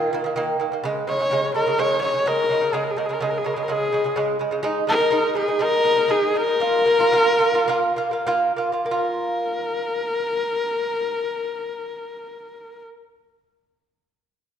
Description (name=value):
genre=mongolian traditional, Mongolian folk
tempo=95-126 BPM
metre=4/4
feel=straight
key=Bb yu mode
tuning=A4 = 440 Hz
part: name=clear horsehead fiddle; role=melody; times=0.0-12.8 s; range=F4 to Db5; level=-21 LUFS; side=left 2 dB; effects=none
part: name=lute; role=arpeggios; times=0.0-12.9 s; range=Db3 to F4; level=-23 LUFS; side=right 2 dB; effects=none
room=wet recital hall reverb, RT60 1.5 s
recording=none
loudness=-19 LUFS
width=side -8 dB against mid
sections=0.0-8.9 A section; 8.9-13.9 B section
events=slowing down 4.6-8.9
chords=0.0 Eb5; 0.8 Db5; 4.6 Ab5; 6.6 Bb5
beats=0.37 | 0.84 1.32 1.79 2.27 | 2.74 3.22 3.69 4.17 | 4.64 5.12 5.61 6.10 | 6.61 7.14 7.69 8.27 | 8.89 9.52 10.15 10.79 | 11.42 12.05 12.68